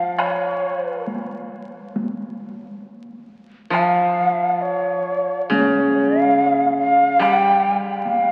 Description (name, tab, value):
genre	japanese traditional, Japanese chamber music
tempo	67-72 BPM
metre	4/4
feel	rubato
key	unclear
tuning	A4 = 443 Hz
part	breathy shakuhachi	melody	0.0-8.3 s	Db5 to G5	-21 LUFS	equal	none
part	koto	accompaniment	0.0-8.3 s	Db3 to G3	-24 LUFS	equal	none
part	taiko ensemble	percussion	0.2-8.2 s	none	-31 LUFS	equal	none
room	wet cathedral reverb, RT60 4.2 s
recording	very old 78 rpm record, vinyl crackle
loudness	-19 LUFS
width	mono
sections	0.0-8.3 A section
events	none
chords	none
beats	| 0.20 1.06 1.95 2.84 | 3.73 4.63 5.52 6.38 | 7.21 8.05